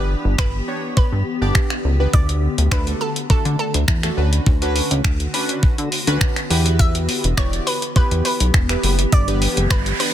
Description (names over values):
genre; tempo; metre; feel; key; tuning
dance-pop; 103 BPM; 4/4; straight; unclear; A4 = 440 Hz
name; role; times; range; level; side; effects
analog pluck; melody; 0.0-10.1 s; A4 to E5; -27 LUFS; right 1 dB; chorus, ping-pong delay
warm analog keys; accompaniment; 0.0-10.1 s; A3 to D5; -25 LUFS; right 1 dB; chorus, phaser
granular cloud pad; sustained chords; 0.0-10.1 s; D3 to G4; -28 LUFS; left 2 dB; built-in reverb, sidechain pumping
chorused synth bass; bass; 0.0-9.9 s; E1 to D3; -19 LUFS; equal; sidechain pumping
crisp 8-bit digital drum machine; drums; 0.4-10.1 s; finger snaps, hi-hat, kick drum; -18 LUFS; equal; soft clipping on snare
noise sweep; sound effects; 9.4-10.1 s; none; -26 LUFS; right 5 dB; none
room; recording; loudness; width
digital ambience; dense, heavily limited modern master; -16 LUFS; side -11 dB against mid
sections
0.0-10.1 A section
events
noise sweep 9.4-10.1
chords
0.0 G; 2.1 D; 4.2 Bmadd9; 6.5 Em; 9.1 G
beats
0.39 0.97 1.55 | 2.13 2.72 3.30 3.88 | 4.46 5.05 5.63 6.21 | 6.79 7.38 7.96 8.54 | 9.12 9.71